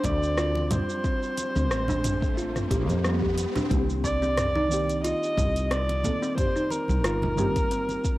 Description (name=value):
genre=organic downtempo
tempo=90 BPM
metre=4/4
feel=swing 55% on 16ths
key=C dorian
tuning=A4 = 440 Hz
part: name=dark kamancheh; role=melody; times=0.0-8.2 s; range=Bb4 to Eb5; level=-29 LUFS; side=equal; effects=cassette tape, tape echo
part: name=kalimba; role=arpeggios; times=0.0-7.9 s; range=G3 to G4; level=-30 LUFS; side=equal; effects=cassette tape, tape echo
part: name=woody fretless electric bass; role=bass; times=0.0-8.0 s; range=G1 to F2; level=-28 LUFS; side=equal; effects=tube saturation
part: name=deep house drum kit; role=drums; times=0.0-8.2 s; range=hi-hat, rim click, shaker, toms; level=-31 LUFS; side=equal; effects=cassette tape
part: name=electronic kick drum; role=drums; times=0.0-8.2 s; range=none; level=-28 LUFS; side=equal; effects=cassette tape
part: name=congas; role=percussion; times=0.0-8.0 s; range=none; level=-34 LUFS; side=right 1 dB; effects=none
part: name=riser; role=sound effects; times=0.9-3.7 s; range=none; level=-36 LUFS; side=equal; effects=none
part: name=wind-like tuned noise texture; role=texture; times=0.0-3.7 s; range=C4 to C5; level=-43 LUFS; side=right 1 dB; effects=none
part: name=deep mellow chord stab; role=accompaniment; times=3.7-8.2 s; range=Eb3 to A4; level=-33 LUFS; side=right 1 dB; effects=chorus, sidechain pumping, cassette tape, tape echo
room=light reverb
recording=home recording on cassette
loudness=-23 LUFS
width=side -17 dB against mid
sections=0.0-3.7 A section; 3.7-8.2 B section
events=riser 0.9-3.7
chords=0.0 Dm7; 3.7 Cm7